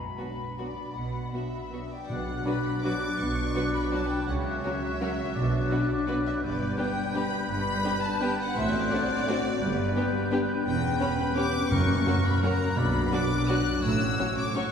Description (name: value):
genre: classical, orchestral ballroom waltz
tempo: 148-183 BPM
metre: 3/4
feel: rubato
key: B minor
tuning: A4 = 440 Hz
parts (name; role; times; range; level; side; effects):
- small flute group; second line; 0.0-14.7 s; B5 to G6; -36 LUFS; left 3 dB; none
- clear studio cello section; bass; 0.0-14.1 s; E2 to C#3; -33 LUFS; right 2 dB; none
- warm studio double bass section; bass; 0.0-14.1 s; E1 to C#2; -33 LUFS; right 2 dB; none
- warm studio violin section; melody; 0.2-14.7 s; B4 to F#6; -34 LUFS; left 2 dB; none
- warm studio violin section; second line; 0.2-14.6 s; F#4 to C#5; -37 LUFS; left 1 dB; none
- rich studio viola section; accompaniment; 0.2-14.6 s; F#3 to D4; -34 LUFS; equal; none
- warm French horn section; sustained chords; 0.2-14.7 s; F#3 to D4; -32 LUFS; left 3 dB; none
- clear oboe; second line; 2.1-14.7 s; A#4 to D5; -36 LUFS; right 1 dB; none
- timpani; percussion; 2.1-2.6, 5.4-5.9, 11.7-13.3 s; F#2 to B2; -34 LUFS; equal; none
room: wet church reverb, RT60 3.4 s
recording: heard from further back in the room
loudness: -25 LUFS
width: side -7 dB against mid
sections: 0.0-2.1 A section; 2.1-14.7 A section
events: none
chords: 0.0 Bm; 4.3 F#7(no3)/C#; 5.4 Bm; 6.4 G; 8.6 D7/A; 9.6 G; 10.7 C#m7b5/E; 11.7 F#; 12.8 Bm; 13.8 F#m/A